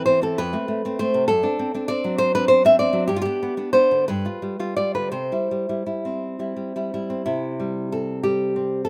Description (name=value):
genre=romantic piece for solo classical guitar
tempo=53-68 BPM (dotted quarters)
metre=6/8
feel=rubato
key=C major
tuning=A4 = 440 Hz
part: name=nylon-string guitar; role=solo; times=0.0-8.9 s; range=F2 to E5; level=-22 LUFS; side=equal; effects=none
room=little or no reverb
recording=recorded outdoors, with no room sound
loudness=-22 LUFS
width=mono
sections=0.0-7.3 A section; 7.3-8.9 B section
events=none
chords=0.4 F; 1.3 D7/F#; 3.1 G; 4.1 G7; 5.1 C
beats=0.40 | 1.32 2.20 | 3.12 4.08 | 5.13 6.21 | 7.28 8.24